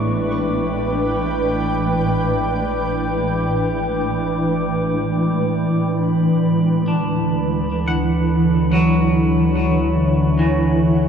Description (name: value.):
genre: ambient.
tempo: free time.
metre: none.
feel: none.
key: unclear.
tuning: A4 = 440 Hz.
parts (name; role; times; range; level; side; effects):
shimmering ambient pad; sustained chords; 0.0-11.1 s; A2 to G5; -17 LUFS; equal; chorus, built-in reverb.
twangy electric guitar; arpeggios; 0.0-11.1 s; E3 to C#6; -26 LUFS; left 1 dB; ping-pong delay.
deep rumbling drone; bass; 0.0-11.1 s; A1 to D2; -27 LUFS; equal; built-in reverb.
organ-like drone; drone; 0.0-11.1 s; G#3 to D4; -30 LUFS; equal; ensemble chorus, built-in reverb.
glass harmonica; texture; 0.0-11.1 s; B5 to D6; -32 LUFS; right 1 dB; none.
room: wet huge ambient reverb, RT60 8.5 s.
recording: dark, warm production.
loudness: -16 LUFS.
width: side -7 dB against mid.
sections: 0.0-11.1 A section.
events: filter sweep on ambient pad 0.0-11.1.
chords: 0.0 A7sus4; 5.9 Dmaj7.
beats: free time.